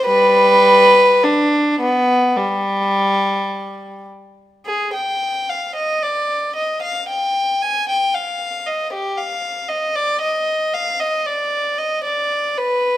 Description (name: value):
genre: classical, baroque-style suite movement for unaccompanied violin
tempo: 50-59 BPM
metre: 4/4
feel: rubato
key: unclear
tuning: A4 = 440 Hz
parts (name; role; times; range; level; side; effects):
- warm violin; solo; 0.0-13.0 s; G3 to Ab5; -15 LUFS; equal; none
room: wet recital hall reverb, RT60 1.5 s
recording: none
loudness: -15 LUFS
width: side -13 dB against mid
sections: 0.0-4.7 A section; 4.7-13.0 B section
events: none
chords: none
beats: | 0.06 1.23 2.37 3.49 | 4.67 5.76 6.84 7.89 | 8.92 9.95 10.99 12.03